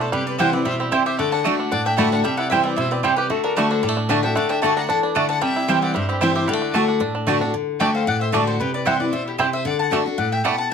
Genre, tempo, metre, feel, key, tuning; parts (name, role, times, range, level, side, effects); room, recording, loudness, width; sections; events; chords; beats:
bluegrass; 227 BPM; 4/4; swing 54% on 8ths; D mixolydian; A4 = 440 Hz
bluegrass banjo; melody; 0.0-10.5 s; G3 to G4; -25 LUFS; right 4 dB
mandolin; melody; 0.0-10.7 s; G4 to B5; -25 LUFS; left 3 dB
clear fiddle; second line; 0.0-10.7 s; E4 to F#5; -30 LUFS; left 3 dB
picked steel-string acoustic guitar; accompaniment; 0.0-10.7 s; G2 to F#4; -22 LUFS; left 3 dB
mandolin; stabs; 0.4-10.5 s; A3 to A5; -22 LUFS; right 5 dB
moderate small room reverb, RT60 0.5 s; close, detailed microphones; -18 LUFS; side -6 dB against mid
0.0-7.5 A section; 7.5-10.7 A section
0.1 C; 1.2 D; 2.2 C; 3.3 D; 5.4 C; 6.5 D; 8.6 C; 9.7 D
| 0.13 0.40 0.66 0.92 | 1.19 1.45 1.72 1.98 | 2.25 2.51 2.77 3.04 | 3.30 3.57 3.83 4.10 | 4.36 4.63 4.89 5.16 | 5.42 5.68 5.95 6.21 | 6.48 6.74 7.01 7.27 | 7.54 7.80 8.07 8.33 | 8.60 8.86 9.12 9.39 | 9.65 9.92 10.18 10.45 | 10.71